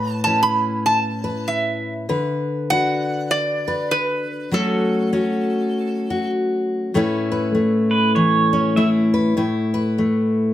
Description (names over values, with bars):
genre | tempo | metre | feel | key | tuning
acoustic folk duo or small band | 99 BPM | 4/4 | swing 60% on 8ths | A major | A4 = 440 Hz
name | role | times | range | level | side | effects
metal-body resonator slide guitar | melody | 0.0-6.3 s | A4 to B5 | -21 LUFS | right 1 dB | plate reverb
fingerpicked steel-string acoustic guitar | accompaniment | 0.0-10.5 s | A2 to B4 | -19 LUFS | left 1 dB | none
pedal steel guitar | second line | 7.9-8.9 s | B4 to E5 | -19 LUFS | right 5 dB | none
room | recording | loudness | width
moderate studio reverb, RT60 0.8 s | none | -18 LUFS | side -12 dB against mid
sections
0.0-6.9 A section; 6.9-10.5 B section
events
pedal steel guitar solo 6.9-10.5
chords
0.0 Aadd9; 2.1 D6; 4.5 F#m; 6.9 Aadd9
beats
0.26 0.86 1.47 | 2.08 2.69 3.29 3.90 | 4.51 5.12 5.72 6.33 | 6.94 7.54 8.15 8.76 | 9.37 9.97